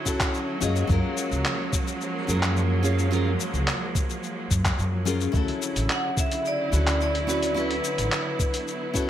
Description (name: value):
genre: sunset chillout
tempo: 108 BPM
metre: 4/4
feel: straight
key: unclear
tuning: A4 = 438 Hz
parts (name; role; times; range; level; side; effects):
- clear studio string section; sustained chords; 0.0-9.1 s; C#3 to E4; -30 LUFS; right 2 dB; none
- nylon-string guitar; accompaniment; 0.1-9.1 s; C#4 to D#5; -29 LUFS; moving between left 6 dB and right 5 dB; auto-pan, ping-pong delay
- dusty soul sampler-style drum kit; drums; 0.1-9.1 s; handclaps, hi-hat, shaker; -30 LUFS; left 1 dB; gated reverb
- electronic kick drum; drums; 0.1-9.1 s; none; -26 LUFS; equal; none
- upright bass; bass; 0.6-8.1 s; A1 to F#2; -25 LUFS; equal; none
- vibraphone with medium hard mallets; melody; 5.9-9.1 s; B4 to F#5; -28 LUFS; left 2 dB; ping-pong delay
room: moderate plate reverb, RT60 1.7 s, small room ambience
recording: bright 1980s-style digital production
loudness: -22 LUFS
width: side -11 dB against mid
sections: 0.0-9.1 A section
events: none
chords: 0.0 Dmaj9; 0.6 F#maj9; 5.3 Dmaj9